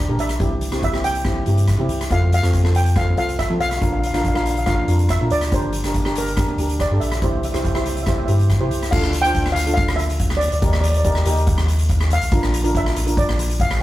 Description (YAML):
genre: calypso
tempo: 141 BPM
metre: 4/4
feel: straight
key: unclear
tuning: A4 = 442 Hz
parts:
  - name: steel pan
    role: melody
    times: 0.0-13.8 s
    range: Bb4 to G5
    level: -24 LUFS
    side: equal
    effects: none
  - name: pure sine sub bass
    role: bass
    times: 0.0-13.8 s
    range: G1 to F3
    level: -20 LUFS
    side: equal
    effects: none
  - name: steel pan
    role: accompaniment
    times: 0.1-13.6 s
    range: C4 to C5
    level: -24 LUFS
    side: right 1 dB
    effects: none
  - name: street-band drum kit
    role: drums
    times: 0.2-13.8 s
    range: crash cymbal, hi-hat, kick drum, rim click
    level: -22 LUFS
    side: equal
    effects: none
room: moderate stone room reverb, RT60 1.0 s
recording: rough rehearsal-room recording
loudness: -16 LUFS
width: side -15 dB against mid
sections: 0.0-8.9 A section; 8.9-13.8 B section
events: none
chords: 0.4 C; 2.1 F; 3.8 Bb; 5.5 Gm; 7.2 C; 8.9 Dm7; 10.6 Eb; 12.3 Bb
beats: | 0.41 0.83 1.26 1.69 | 2.11 2.54 2.96 3.39 | 3.82 4.25 4.67 5.10 | 5.52 5.95 6.38 6.80 | 7.23 7.66 8.08 8.51 | 8.93 9.36 9.78 10.21 | 10.63 11.05 11.48 11.90 | 12.33 12.75 13.18 13.60